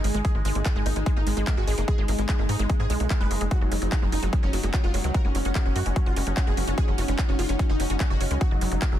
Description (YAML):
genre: psychedelic trance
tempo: 147 BPM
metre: 4/4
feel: straight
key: unclear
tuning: A4 = 441 Hz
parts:
  - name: supersaw stab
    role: melody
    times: 0.0-9.0 s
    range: F#3 to B4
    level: -32 LUFS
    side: right 1 dB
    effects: phaser, sidechain pumping, dub echo
  - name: evolving wavetable pad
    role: sustained chords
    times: 0.0-9.0 s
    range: G#3 to D#4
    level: -36 LUFS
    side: left 2 dB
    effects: chorus, built-in reverb, sidechain pumping
  - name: wide unison pluck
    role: riff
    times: 0.0-8.9 s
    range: F#3 to F#4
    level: -35 LUFS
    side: right 2 dB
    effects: auto-pan, sidechain pumping, dub echo
  - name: tight sequencer bass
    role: bass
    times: 0.0-9.0 s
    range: F#1 to G#2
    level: -26 LUFS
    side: equal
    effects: none
  - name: big-room dance drum kit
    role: drums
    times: 0.0-8.9 s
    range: handclaps, hi-hat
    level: -34 LUFS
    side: equal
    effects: overdrive
  - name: airy breathy pad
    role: texture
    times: 0.0-9.0 s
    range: C#4 to G#5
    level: -36 LUFS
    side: equal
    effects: chorus, sidechain pumping
  - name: electronic kick drum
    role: drums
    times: 0.2-8.9 s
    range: none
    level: -24 LUFS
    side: equal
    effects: overdrive
room: digital ambience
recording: dense, heavily limited modern master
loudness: -22 LUFS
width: side -11 dB against mid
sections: 0.0-9.0 A section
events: none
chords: 0.0 G#5; 3.5 F#5